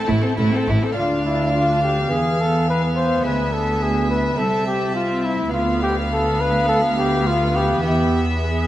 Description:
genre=classical, baroque-style concerto movement with solo episodes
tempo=105 BPM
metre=4/4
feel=straight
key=A minor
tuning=A4 = 435 Hz
part: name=mellow trumpet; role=melody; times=0.0-8.7 s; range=E4 to C5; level=-22 LUFS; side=left 1 dB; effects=none
part: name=rich chamber violin section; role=melody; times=0.0-8.7 s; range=G#5 to B5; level=-37 LUFS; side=left 2 dB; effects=none
part: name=rich studio violin section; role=second line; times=0.0-8.7 s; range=E4 to F5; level=-24 LUFS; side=equal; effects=none
part: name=lute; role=accompaniment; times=0.0-8.7 s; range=D2 to F4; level=-32 LUFS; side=equal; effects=none
part: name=rich studio viola section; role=accompaniment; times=0.0-8.7 s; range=A3 to D4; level=-25 LUFS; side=right 2 dB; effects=none
part: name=rich chamber double bass section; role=bass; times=0.1-0.8 s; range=A1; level=-22 LUFS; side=right 1 dB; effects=none
part: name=warm chamber cello section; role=bass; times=0.1-8.7 s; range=C2 to A2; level=-22 LUFS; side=equal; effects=none
room=wet recital hall reverb, RT60 1.4 s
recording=vinyl crackle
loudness=-17 LUFS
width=side -13 dB against mid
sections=1.0-8.7 A section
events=none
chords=0.0 Am; 1.0 Dm; 2.1 E; 3.3 E7/D; 4.4 Am/C; 5.5 Bdim/D; 7.8 E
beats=0.38 | 0.97 1.54 2.12 2.69 | 3.26 3.83 4.39 4.96 | 5.54 6.11 6.68 7.26 | 7.85 8.44

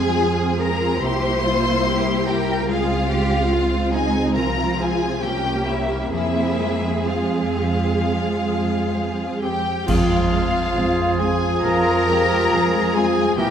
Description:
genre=classical, slow romantic movement for symphony orchestra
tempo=63-73 BPM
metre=4/4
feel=rubato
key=F minor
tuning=A4 = 440 Hz
part: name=rich chamber violin section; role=melody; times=0.0-13.5 s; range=E5 to C6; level=-26 LUFS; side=left 4 dB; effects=none
part: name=warm symphonic violin section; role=second line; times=0.0-13.5 s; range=E4 to C5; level=-26 LUFS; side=left 2 dB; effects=none
part: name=dark symphonic viola section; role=accompaniment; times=0.0-13.5 s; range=F3 to F4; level=-26 LUFS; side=right 2 dB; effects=none
part: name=concert harp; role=arpeggios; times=0.0-13.5 s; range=C3 to C6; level=-28 LUFS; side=left 7 dB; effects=none
part: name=warm symphonic cello section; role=bass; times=0.0-13.5 s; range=Eb4 to Bb4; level=-27 LUFS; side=right 2 dB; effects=none
part: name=warm symphonic double bass section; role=bass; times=0.0-13.5 s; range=C2 to F2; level=-25 LUFS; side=right 3 dB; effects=none
part: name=baroque flute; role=second line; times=9.4-13.5 s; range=F5 to Bb5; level=-28 LUFS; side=equal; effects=none
part: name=bright clarinet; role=second line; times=9.4-13.5 s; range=F4 to Bb4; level=-27 LUFS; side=left 1 dB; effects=none
part: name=warm oboe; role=second line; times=9.9-13.5 s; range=Ab4 to Bb4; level=-28 LUFS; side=right 3 dB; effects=none
part: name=mellow bassoon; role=accompaniment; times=9.9-13.5 s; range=E3 to F3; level=-25 LUFS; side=right 4 dB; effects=none
part: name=mellow French horn section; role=sustained chords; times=9.9-13.5 s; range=Ab3 to F4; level=-26 LUFS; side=left 4 dB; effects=none
part: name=clash cymbals and concert bass drum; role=percussion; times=9.9-11.6 s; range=none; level=-26 LUFS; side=right 1 dB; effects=none
room=wet scoring stage reverb, RT60 1.7 s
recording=none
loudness=-18 LUFS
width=side -8 dB against mid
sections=0.0-9.9 A section; 9.9-13.5 A section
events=band accent 9.9-10.8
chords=0.0 Fm; 1.0 C7; 2.7 Dbmaj7; 4.3 Fm/C; 5.2 C7b9; 6.1 Fm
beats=0.20 1.02 1.85 | 2.68 3.51 4.35 5.22 | 6.13 7.06 8.01 8.95 | 9.88 10.76 11.64 12.53 | 13.38

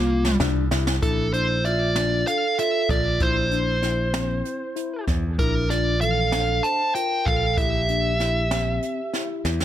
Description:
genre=progressive instrumental, band music in an uneven meter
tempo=192 BPM (eighths)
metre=7/8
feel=straight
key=Bb lydian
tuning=A4 = 441 Hz
part: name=dark smooth lead guitar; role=melody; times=0.0-9.4 s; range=Bb3 to A5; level=-24 LUFS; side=equal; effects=overdrive, plate reverb, digital delay
part: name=vibraphone with medium hard mallets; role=second line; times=0.0-9.4 s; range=D4 to C5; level=-30 LUFS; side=right 6 dB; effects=plate reverb
part: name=mellow tine electric piano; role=arpeggios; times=0.0-9.6 s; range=E3 to E5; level=-30 LUFS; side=left 9 dB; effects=wide subtle chorus, plate reverb, digital delay
part: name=modern bright picked electric bass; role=bass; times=0.0-9.6 s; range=Bb1 to E2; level=-24 LUFS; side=equal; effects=none
part: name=jazz brush drum kit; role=drums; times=0.2-9.6 s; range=hi-hat, kick drum, snare drum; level=-27 LUFS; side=equal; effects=none
room=light reverb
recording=none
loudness=-20 LUFS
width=side -11 dB against mid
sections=0.0-1.0 A section; 1.0-9.6 B section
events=drum fill 0.0-1.0, 9.1-9.6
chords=0.0 C7sus4; 1.0 Bb; 3.2 C7/Bb; 5.4 Bbmaj7; 7.6 C7/Bb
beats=0.09 0.40 0.71 | 1.02 1.34 1.65 1.96 2.27 2.58 2.90 | 3.21 3.52 3.83 4.14 4.45 4.77 5.08 | 5.39 5.70 6.01 6.33 6.64 6.95 7.26 | 7.57 7.88 8.20 8.51 8.82 9.13 9.44

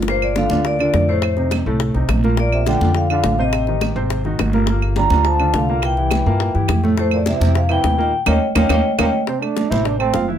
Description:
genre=Afro-Cuban jazz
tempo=209 BPM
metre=4/4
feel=straight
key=unclear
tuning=A4 = 438 Hz
part: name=warm concert grand piano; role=accompaniment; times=0.0-10.4 s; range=A2 to A5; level=-22 LUFS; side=equal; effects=none
part: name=upright bass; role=bass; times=0.0-10.4 s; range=F#1 to G2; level=-19 LUFS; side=equal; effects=none
part: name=bongos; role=percussion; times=0.0-10.3 s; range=none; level=-25 LUFS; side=left 8 dB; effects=none
part: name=vibraphone with medium mallets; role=melody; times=0.1-9.1 s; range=C5 to Bb5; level=-20 LUFS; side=left 2 dB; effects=none
part: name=trombone with cup mute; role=second line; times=0.1-10.3 s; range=G2 to E4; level=-26 LUFS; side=right 7 dB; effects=none
part: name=congas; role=percussion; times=0.1-10.4 s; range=none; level=-24 LUFS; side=right 3 dB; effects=none
part: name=claves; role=percussion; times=0.2-10.1 s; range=none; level=-25 LUFS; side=right 11 dB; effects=none
room=light reverb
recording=none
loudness=-15 LUFS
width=side -9 dB against mid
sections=0.1-9.3 A section; 9.3-10.4 B section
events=drum fill 8.1-9.3; band accent 8.1-9.3; trombone solo 9.3-10.4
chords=0.1 Gm7; 1.2 F7; 2.4 Bb69; 3.5 Am7b5; 4.1 G#7; 4.7 Gm9; 5.8 C7; 7.0 Fmaj9; 8.1 Eb7; 9.3 Dm9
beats=| 0.08 0.37 0.65 0.94 | 1.23 1.52 1.81 2.09 | 2.38 2.67 2.96 3.24 | 3.53 3.82 4.11 4.39 | 4.68 4.97 5.25 5.54 | 5.83 6.12 6.40 6.69 | 6.98 7.26 7.55 7.84 | 8.13 8.41 8.70 8.99 | 9.28 9.56 9.85 10.14

